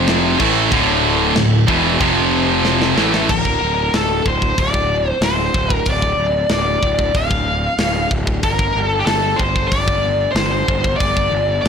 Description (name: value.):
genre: heavy metal.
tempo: 93 BPM.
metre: 4/4.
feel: straight.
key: unclear.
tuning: A4 = 439 Hz.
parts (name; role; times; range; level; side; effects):
heavy high-gain guitar; riff; 0.0-3.3 s; D2 to A3; -18 LUFS; left 13 dB; distortion.
high-gain distorted guitar; riff; 0.0-3.3 s; D2 to A3; -16 LUFS; right 11 dB; distortion.
fuzz picked electric bass; bass; 0.0-11.7 s; D1 to A1; -21 LUFS; equal; overdrive.
tight metal drum kit; drums; 0.1-11.7 s; crash cymbal, hi-hat, kick drum, snare drum; -20 LUFS; equal; soft clipping on kick.
high-gain lead guitar; melody; 3.3-11.7 s; G4 to F5; -18 LUFS; left 1 dB; distortion.
room: light reverb.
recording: blown-out, overdriven recording, overdrive.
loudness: -14 LUFS.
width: side -7 dB against mid.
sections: 0.0-3.3 A section; 3.3-11.7 B section.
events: drum fill 2.6-3.3.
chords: 0.4 D5; 2.0 F5; 3.0 A5; 3.3 N.C.; 8.4 G5.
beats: 0.07 | 0.71 1.36 2.00 2.64 | 3.28 3.93 4.57 5.21 | 5.86 6.50 7.14 7.79 | 8.43 9.08 9.72 10.36 | 11.01 11.65.